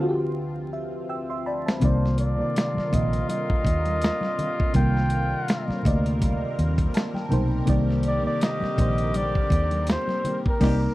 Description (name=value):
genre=R&B, neo-soul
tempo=82 BPM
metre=4/4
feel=swing 55% on 16ths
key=C minor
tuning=A4 = 440 Hz
part: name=breathy flugelhorn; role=melody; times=0.0-10.9 s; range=A4 to G5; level=-28 LUFS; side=equal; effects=slapback echo
part: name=mellow FM electric piano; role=accompaniment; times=0.0-10.9 s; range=C3 to E6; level=-27 LUFS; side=equal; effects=chorus, phaser
part: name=lush unison pad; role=sustained chords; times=0.0-10.9 s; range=D2 to Bb4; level=-36 LUFS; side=equal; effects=chorus, phaser
part: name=dusty soul sampler-style drum kit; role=drums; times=1.7-10.9 s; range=crash cymbal, hi-hat, kick drum, snare drum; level=-25 LUFS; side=equal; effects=none
part: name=mellow horn section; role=stabs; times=1.8-10.8 s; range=D3 to G4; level=-34 LUFS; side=left 3 dB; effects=none
part: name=vintage muted fingered electric bass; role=bass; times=1.8-10.9 s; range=Bb1 to Eb2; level=-24 LUFS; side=equal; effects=none
part: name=congas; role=percussion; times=1.8-10.4 s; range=none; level=-34 LUFS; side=left 1 dB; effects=none
room=little or no reverb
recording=dry, close 1970s-style studio recording, vinyl crackle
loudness=-21 LUFS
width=side -17 dB against mid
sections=0.0-10.9 A section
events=FM electric piano fill 0.4-1.8, 6.6-7.7; drum fill 1.1-1.8; band accent 10.6-10.9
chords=0.0 Dm9; 1.8 Cm9